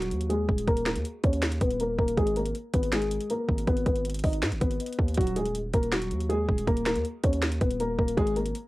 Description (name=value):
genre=hip hop, trap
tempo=160 BPM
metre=4/4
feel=half-time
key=Eb minor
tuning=A4 = 440 Hz
part: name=dark concert grand piano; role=melody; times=0.0-8.5 s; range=Gb3 to Eb5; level=-28 LUFS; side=left 1 dB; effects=low-pass filter, cassette tape
part: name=distorted 808-style bass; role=bass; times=0.0-8.5 s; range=Eb1 to Ab2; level=-30 LUFS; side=equal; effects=distortion
part: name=trap drum kit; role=drums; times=0.0-8.6 s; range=finger snaps, hi-hat, kick drum, snare drum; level=-28 LUFS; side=equal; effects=cassette tape
room=light reverb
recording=home recording on cassette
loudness=-24 LUFS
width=side -19 dB against mid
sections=0.0-8.7 A section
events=filter sweep on grand piano 0.0-5.2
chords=0.0 Ebm; 2.2 Abm; 5.2 Ebm; 8.2 N.C.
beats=0.30 | 0.67 1.05 1.42 1.80 | 2.17 2.55 2.92 3.30 | 3.67 4.05 4.42 4.80 | 5.17 5.55 5.92 6.30 | 6.67 7.05 7.42 7.80 | 8.17 8.55